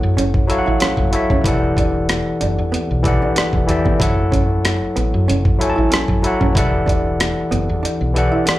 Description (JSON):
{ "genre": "R&B, neo-soul", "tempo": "94 BPM", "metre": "4/4", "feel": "swing 54% on 16ths", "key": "E dorian", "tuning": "A4 = 439 Hz", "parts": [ { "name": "barky tine electric piano", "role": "accompaniment", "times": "0.0-8.6 s", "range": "E3 to A5", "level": "-19 LUFS", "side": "left 2 dB", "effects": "overdrive, plate reverb" }, { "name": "woody fretless electric bass", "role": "bass", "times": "0.0-8.5 s", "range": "E1 to F#2", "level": "-20 LUFS", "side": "equal", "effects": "analog chorus" }, { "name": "hollow-body jazz guitar", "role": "second line", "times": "0.2-8.6 s", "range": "B3 to E4", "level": "-24 LUFS", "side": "right 4 dB", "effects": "plate reverb, slapback echo" }, { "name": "boom bap sampler-style drum kit", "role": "drums", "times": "0.2-8.6 s", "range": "hi-hat, kick drum, rim click", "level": "-18 LUFS", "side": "equal", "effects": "overdrive" } ], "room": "light reverb", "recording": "live gig heard through the venue's PA, club reverb", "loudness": "-15 LUFS", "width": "side -16 dB against mid", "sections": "0.0-8.6 A section", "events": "none", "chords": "0.0 F#m7; 1.4 Em11; 4.0 F#m7; 6.6 Em11" }